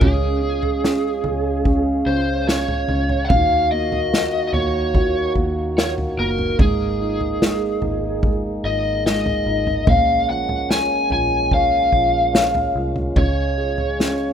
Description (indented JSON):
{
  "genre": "pop ballad",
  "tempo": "73 BPM",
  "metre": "4/4",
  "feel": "straight",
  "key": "unclear",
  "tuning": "A4 = 440 Hz",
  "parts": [
    { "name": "lead guitar through a small cranked amp", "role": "melody", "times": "0.0-14.3 s", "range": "Ab4 to Ab5", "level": "-21 LUFS", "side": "equal", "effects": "overdrive, tape echo" },
    { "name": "dark upright piano", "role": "accompaniment", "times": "0.0-14.3 s", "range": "Eb3 to Db5", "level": "-26 LUFS", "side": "equal", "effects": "none" },
    { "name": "mellow French horn section", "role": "sustained chords", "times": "0.0-14.3 s", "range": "Db3 to F5", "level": "-26 LUFS", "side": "equal", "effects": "none" },
    { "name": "vintage muted fingered electric bass", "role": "bass", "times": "0.0-14.3 s", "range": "Gb1 to Eb2", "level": "-27 LUFS", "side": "equal", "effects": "none" },
    { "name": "unplugged drum kit", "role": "drums", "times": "0.0-14.2 s", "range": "kick drum, snare drum, toms", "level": "-21 LUFS", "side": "equal", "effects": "none" }
  ],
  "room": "small room ambience",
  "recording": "rough home demo mix",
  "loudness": "-17 LUFS",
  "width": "side -8 dB against mid",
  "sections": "0.0-14.3 A section",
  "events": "none",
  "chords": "0.0 Db; 3.3 Ebmadd9; 6.6 Absus2; 9.9 Bbm7; 13.2 Db"
}